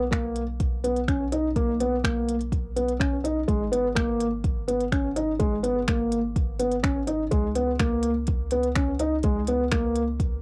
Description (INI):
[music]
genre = piano and strings electronica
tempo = 125 BPM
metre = 4/4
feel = straight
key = G# minor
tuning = A4 = 440 Hz
[part]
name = felt-muted upright piano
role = riff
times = 0.0-10.0 s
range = G#3 to D#4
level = -27 LUFS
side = equal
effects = cassette tape, analog delay
[part]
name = warm sub bass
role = bass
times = 0.0-10.4 s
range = G#1 to C#2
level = -35 LUFS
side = equal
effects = sidechain pumping
[part]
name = electronic kick drum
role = drums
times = 0.1-10.3 s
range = none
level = -29 LUFS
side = equal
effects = none
[part]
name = organic electronic drum kit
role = drums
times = 0.1-10.3 s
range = finger snaps, hi-hat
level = -34 LUFS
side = equal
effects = none
[sound]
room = light reverb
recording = home recording on cassette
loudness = -25 LUFS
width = mono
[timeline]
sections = 0.0-10.4 A section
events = none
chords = 0.0 N.C.; 3.5 G#madd9; 7.3 N.C.